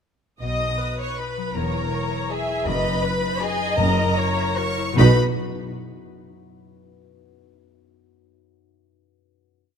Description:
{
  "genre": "classical, orchestral ballroom waltz",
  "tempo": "144-174 BPM",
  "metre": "3/4",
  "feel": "rubato",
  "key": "B major",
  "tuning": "A4 = 438 Hz",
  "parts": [
    { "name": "rich chamber violin section", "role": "melody", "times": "0.4-5.2 s", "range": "G#5 to D#6", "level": "-29 LUFS", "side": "left 3 dB", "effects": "none" },
    { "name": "rich chamber violin section", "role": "second line", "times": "0.4-5.2 s", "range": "G#4 to D#5", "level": "-28 LUFS", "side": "left 2 dB", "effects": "none" },
    { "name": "rich studio viola section", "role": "accompaniment", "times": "0.4-5.2 s", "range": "D#4 to E5", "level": "-27 LUFS", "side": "right 2 dB", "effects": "none" },
    { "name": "concert harp", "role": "arpeggios", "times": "0.4-5.2 s", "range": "E2 to F#5", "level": "-30 LUFS", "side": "left 9 dB", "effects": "none" },
    { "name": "rich chamber double bass section", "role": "bass", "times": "0.4-5.2 s", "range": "E1 to B1", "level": "-25 LUFS", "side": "right 2 dB", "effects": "none" },
    { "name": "warm studio cello section", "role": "bass", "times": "0.4-5.2 s", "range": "E2 to B2", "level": "-27 LUFS", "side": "right 1 dB", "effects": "none" },
    { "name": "timpani", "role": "percussion", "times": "2.7-5.1 s", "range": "F#2 to B2", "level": "-28 LUFS", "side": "left 1 dB", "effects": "none" }
  ],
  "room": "moderate scoring stage reverb, RT60 2.1 s",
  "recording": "close, detailed microphones",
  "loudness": "-19 LUFS",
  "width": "side -7 dB against mid",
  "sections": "0.4-5.0 A section; 5.0-6.2 final chord",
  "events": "none",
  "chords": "0.4 B; 1.6 C#m/E; 2.7 B/F#; 3.8 F#7; 5.0 B",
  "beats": "| 0.42 0.80 1.19 | 1.55 1.92 2.30 | 2.66 3.03 3.41 | 3.78 4.16 4.57 | 4.97"
}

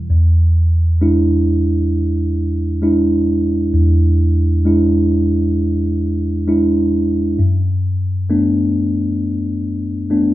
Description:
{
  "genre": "pop",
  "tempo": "66 BPM",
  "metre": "4/4",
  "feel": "straight",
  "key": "unclear",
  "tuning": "A4 = 441 Hz",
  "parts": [
    { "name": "mellow tine electric piano", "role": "solo", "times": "0.0-10.3 s", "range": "E2 to E4", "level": "-13 LUFS", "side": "equal", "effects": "none" }
  ],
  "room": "moderate large studio reverb, RT60 0.8 s",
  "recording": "band playing live in one room",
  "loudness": "-14 LUFS",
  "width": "side -15 dB against mid",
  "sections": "0.1-10.3 A section",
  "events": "none",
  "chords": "0.1 E7; 7.4 Bm7/F#",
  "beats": "| 0.10 1.01 1.92 2.83 | 3.74 4.65 5.55 6.46 | 7.37 8.28 9.19 10.10"
}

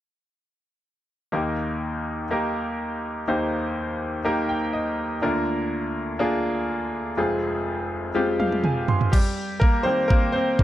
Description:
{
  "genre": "piano-driven pop",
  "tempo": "123 BPM",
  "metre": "4/4",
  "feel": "straight",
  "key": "Eb major",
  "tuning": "A4 = 440 Hz",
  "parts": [
    { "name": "bright grand piano", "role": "accompaniment", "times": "1.3-10.6 s", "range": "F1 to C6", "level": "-23 LUFS", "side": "equal", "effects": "none" },
    { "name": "pop drum kit", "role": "drums", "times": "8.2-10.6 s", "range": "crash cymbal, kick drum, toms", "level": "-21 LUFS", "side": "equal", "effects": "none" }
  ],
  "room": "moderate studio reverb, RT60 0.5 s",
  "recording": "dark, warm production",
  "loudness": "-22 LUFS",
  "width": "side -13 dB against mid",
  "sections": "1.3-9.1 A section; 9.1-10.6 B section",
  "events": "grand piano fill 4.3-5.2, 8.2-9.1; drum fill 8.2-9.1; grand piano solo 9.1-10.6",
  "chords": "1.3 Eb; 5.2 Bb/D; 7.2 Fm; 9.1 Eb",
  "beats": "| 1.33 1.81 2.30 2.79 | 3.28 3.77 4.25 4.74 | 5.23 5.72 6.21 6.69 | 7.18 7.67 8.16 8.64 | 9.13 9.62 10.11 10.60"
}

